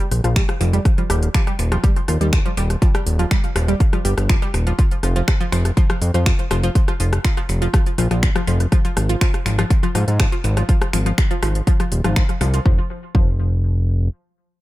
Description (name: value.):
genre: melodic techno.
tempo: 122 BPM.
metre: 4/4.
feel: straight.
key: F minor.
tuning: A4 = 441 Hz.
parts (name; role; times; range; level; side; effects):
analog pluck; arpeggios; 0.0-13.3 s; F3 to G4; -25 LUFS; equal; chorus, sidechain pumping, analog delay.
house drum kit; drums; 0.0-12.6 s; finger snaps, hi-hat, rim click; -26 LUFS; left 1 dB; analog delay.
fat analog bass; bass; 0.1-14.1 s; Eb1 to Ab2; -18 LUFS; equal; sidechain pumping.
electronic kick drum; drums; 0.4-13.3 s; none; -17 LUFS; equal; none.
room: little or no reverb.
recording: echo-heavy mix.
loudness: -16 LUFS.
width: side -17 dB against mid.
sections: 0.0-12.7 A section; 12.7-14.6 B section.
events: drop 0.0-12.7.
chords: 0.0 Fsus24; 0.9 Eb; 4.8 Fsus4; 8.7 N.C..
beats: 0.36 | 0.85 1.34 1.84 2.33 | 2.82 3.31 3.80 4.29 | 4.79 5.28 5.77 6.26 | 6.75 7.25 7.74 8.23 | 8.72 9.21 9.71 10.20 | 10.69 11.18 11.67 12.16 | 12.66 13.15 13.64.